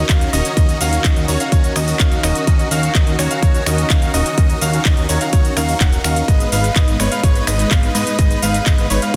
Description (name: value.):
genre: EDM, festival progressive house.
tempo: 126 BPM.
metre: 4/4.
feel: straight.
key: Eb minor.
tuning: A4 = 440 Hz.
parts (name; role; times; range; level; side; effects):
muted studio string section; sustained chords; 0.0-9.2 s; Eb3 to Cb5; -29 LUFS; equal; sidechain pumping.
bright concert grand piano; arpeggios; 0.0-9.2 s; Db5 to Gb5; -26 LUFS; equal; sidechain pumping, delay.
dense compressed supersaw; riff; 0.0-9.2 s; Ab3 to Gb5; -24 LUFS; equal; sidechain pumping, delay.
fat analog bass; bass; 0.0-9.2 s; Eb1 to Ab2; -23 LUFS; equal; sidechain pumping.
electronic kick drum; drums; 0.1-9.2 s; none; -16 LUFS; equal; none.
house drum kit; drums; 0.1-9.2 s; cabasa, finger snaps, handclaps, hi-hat; -24 LUFS; equal; none.
room: light reverb.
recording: dense, heavily limited modern master.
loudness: -16 LUFS.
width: mono.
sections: 0.0-9.2 A section.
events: none.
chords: 0.0 Ebm7; 6.3 Abm.